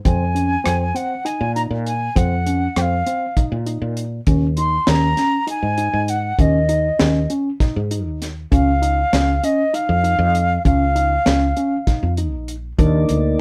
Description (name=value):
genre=progressive instrumental, band music in an uneven meter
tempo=198 BPM (eighths)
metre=7/8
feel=straight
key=Eb dorian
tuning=A4 = 440 Hz
part: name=wooden flute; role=melody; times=0.1-12.1 s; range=Eb5 to C6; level=-23 LUFS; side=equal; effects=none
part: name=tine electric piano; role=arpeggios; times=0.1-13.2 s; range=C4 to Eb4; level=-26 LUFS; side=equal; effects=none
part: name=woody fretless electric bass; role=bass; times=0.1-13.3 s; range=Bb1 to Bb2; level=-22 LUFS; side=equal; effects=none
part: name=deep reggae drum kit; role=drums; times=0.1-13.2 s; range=hi-hat, kick drum, rim click, snare drum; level=-23 LUFS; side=equal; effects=none
part: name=mellow tonewheel organ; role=accompaniment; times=12.8-13.4 s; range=Bb3 to D5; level=-21 LUFS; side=equal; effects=slow rotary speaker
room=light reverb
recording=band playing live in one room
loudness=-19 LUFS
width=mono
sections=0.0-12.8 A section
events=none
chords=0.1 Fm7; 4.3 Eb5; 8.5 Db; 12.8 Bb